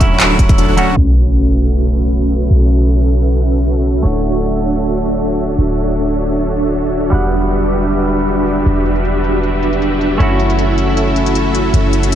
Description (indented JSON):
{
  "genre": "future bass",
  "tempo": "156 BPM",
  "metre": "4/4",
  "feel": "swing 53% on 16ths, half-time",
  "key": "unclear",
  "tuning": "A4 = 440 Hz",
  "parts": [
    { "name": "semi-hollow electric guitar", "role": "accompaniment", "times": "0.0-12.2 s", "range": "F#3 to F#5", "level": "-20 LUFS", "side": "right 2 dB", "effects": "sidechain pumping, ping-pong delay" },
    { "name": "dense compressed supersaw", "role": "riff", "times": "0.0-12.2 s", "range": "C#4 to A5", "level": "-16 LUFS", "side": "equal", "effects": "sidechain pumping, low-pass filter" },
    { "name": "warm 808-style bass", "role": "bass", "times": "0.0-12.2 s", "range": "D1 to B1", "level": "-16 LUFS", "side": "equal", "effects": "tube saturation, sidechain pumping" },
    { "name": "electronic kick drum", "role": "drums", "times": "0.0-0.6 s", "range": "none", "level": "-12 LUFS", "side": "equal", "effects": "studio reverb" },
    { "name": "trap drum kit", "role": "drums", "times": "0.0-12.2 s", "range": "handclaps, hi-hat, ride cymbal", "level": "-19 LUFS", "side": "equal", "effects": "studio reverb" },
    { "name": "sub drop", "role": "sound effects", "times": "1.0-2.5 s", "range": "none", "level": "-19 LUFS", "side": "equal", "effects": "none" }
  ],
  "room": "light reverb, digital ambience",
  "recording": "dark, warm production, low-pass filter",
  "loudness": "-12 LUFS",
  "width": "side -10 dB against mid",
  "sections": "1.0-12.2 A section",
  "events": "impact 1.0-2.5; filter sweep on supersaw synth 1.0-12.2; filter sweep 1.0-12.2",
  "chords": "0.0 Dmaj9; 1.0 B9sus4; 4.0 Dmaj9; 7.1 Em9; 10.2 F#m7",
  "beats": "0.20 0.58 | 0.97 1.35 1.74 2.12 | 2.51 2.89 3.28 3.66 | 4.04 4.43 4.81 5.20 | 5.58 5.97 6.35 6.74 | 7.12 7.51 7.89 8.28 | 8.66 9.04 9.43 9.81 | 10.20 10.58 10.97 11.35 | 11.74 12.12"
}